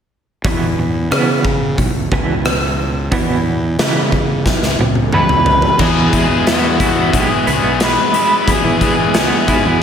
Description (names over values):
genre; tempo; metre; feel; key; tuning
quiet-loud alternative rock; 90 BPM; 4/4; straight; unclear; A4 = 440 Hz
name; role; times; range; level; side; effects
fuzz fingered electric bass; bass; 0.4-9.8 s; B1 to E3; -19 LUFS; equal; overdrive
big rock drum kit; drums; 0.4-9.6 s; crash cymbal, hi-hat, kick drum, rim click, snare drum, toms; -16 LUFS; equal; none
twelve-string electric guitar; arpeggios; 0.5-9.8 s; E2 to E4; -20 LUFS; right 4 dB; tremolo
octave-fuzz lead guitar; melody; 5.1-9.8 s; F#4 to B4; -17 LUFS; left 1 dB; distortion
distorted electric guitar; riff; 5.8-9.8 s; E2 to E3; -17 LUFS; left 7 dB; distortion, slapback echo
room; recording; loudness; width
moderate lush hall reverb, RT60 2.0 s, small room ambience; big arena sound; -12 LUFS; side -8 dB against mid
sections
0.4-5.8 A section; 5.8-9.8 B section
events
drum fill 4.5-5.8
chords
0.4 E5; 5.8 E